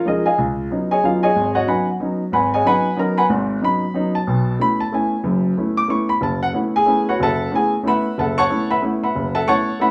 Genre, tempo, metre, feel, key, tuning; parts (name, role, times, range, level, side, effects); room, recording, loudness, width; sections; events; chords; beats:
jazz; 185 BPM; 3/4; swing 61% on 8ths; A4 = 438 Hz
warm grand piano; solo; 0.0-9.9 s; F#1 to D6; -19 LUFS; equal
wet club reverb, RT60 0.8 s; small room ambience; -19 LUFS; mono
0.0-4.3 A section; 4.3-9.9 A section
0.4 Db9sus4; 4.3 B9sus4
0.05 | 0.38 0.70 1.03 | 1.35 1.68 2.00 | 2.33 2.65 2.98 | 3.30 3.62 3.95 | 4.27 4.60 4.92 | 5.25 5.57 5.89 | 6.22 6.54 6.87 | 7.19 7.52 7.84 | 8.17 8.49 8.81 | 9.14 9.46 9.79